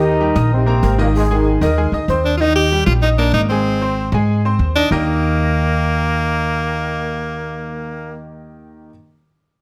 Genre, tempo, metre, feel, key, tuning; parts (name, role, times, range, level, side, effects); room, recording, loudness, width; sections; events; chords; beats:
latin; 191 BPM; 4/4; straight; Eb major; A4 = 440 Hz
mellow trombone section; melody; 0.0-1.9 s; Ab2 to Eb4; -21 LUFS; equal; plate reverb
breathy long shakuhachi; second line; 0.0-2.3 s; G4 to C5; -25 LUFS; equal
bright grand piano; accompaniment; 0.0-8.9 s; Eb3 to Eb6; -25 LUFS; equal
upright bass; bass; 0.0-8.9 s; Ab1 to Ab2; -20 LUFS; equal
edgy tenor saxophone; melody; 2.2-8.2 s; Bb3 to G4; -21 LUFS; equal; plate reverb
moderate large studio reverb, RT60 0.9 s; -17 LUFS; mono
0.0-2.4 A section; 2.4-4.9 B section; 4.9-7.4 C section
0.0 Eb; 1.1 Ab; 2.4 Eb; 3.7 Ab; 4.9 Eb
0.20 0.52 0.83 | 1.15 1.46 1.77 2.09 | 2.40 2.72 3.03 3.35 | 3.66 3.97 4.29 4.60 | 4.92 5.23 5.54 5.86 | 6.17 6.49 6.80 7.12